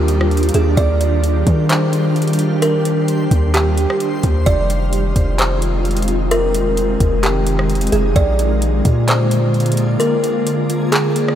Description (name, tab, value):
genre	hip hop, atmospheric cloud-rap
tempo	130 BPM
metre	4/4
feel	half-time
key	Eb major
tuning	A4 = 440 Hz
part	kalimba	melody	0.0-11.4 s	G4 to D5	-20 LUFS	right 1 dB	analog delay
part	ethereal airy pad	sustained chords	0.0-11.4 s	D3 to G4	-20 LUFS	equal	ensemble chorus, built-in reverb, sidechain pumping
part	long sustained 808-style bass	bass	0.0-10.0 s	F1 to Eb3	-17 LUFS	equal	none
part	backwards swelling texture	texture	0.0-11.4 s	G3 to D5	-30 LUFS	equal	built-in reverb
part	smooth R&B drum kit	drums	0.1-11.4 s	handclaps, hi-hat, kick drum, rim click	-21 LUFS	equal	none
room	moderate huge ambient reverb, RT60 7.7 s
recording	dreamy mix soaked in reverb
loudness	-14 LUFS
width	side -10 dB against mid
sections	0.0-11.4 A section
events	kick muted 10.0-11.4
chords	0.0 Ebmaj9; 4.5 Fm7; 8.2 Bb7